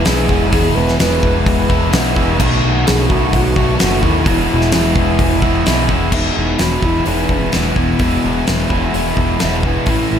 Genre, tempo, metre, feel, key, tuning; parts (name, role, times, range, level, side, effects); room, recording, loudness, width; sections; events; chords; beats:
rock, shoegaze and dream pop; 128 BPM; 4/4; straight; E major; A4 = 440 Hz
bass ocarina; melody; 0.0-10.2 s; B3 to B4; -22 LUFS; left 1 dB; analog delay
crunchy overdriven guitar; riff; 0.0-10.2 s; E2 to F#4; -16 LUFS; equal; wide subtle chorus
growling picked electric bass; bass; 0.0-10.2 s; E1 to D#2; -19 LUFS; equal; overdrive
huge arena drum kit; drums; 0.1-10.0 s; crash cymbal, hi-hat, kick drum, snare drum; -18 LUFS; equal
light reverb, studio reverb; -12 LUFS; side -8 dB against mid
0.0-6.1 A section; 6.1-10.2 B section
0.0 E; 2.4 B7; 4.3 E
0.05 | 0.52 0.98 1.45 1.92 | 2.39 2.86 3.33 3.79 | 4.26 4.73 5.20 5.66 | 6.13 6.60 7.07 7.54 | 8.00 8.47 8.94 9.40 | 9.87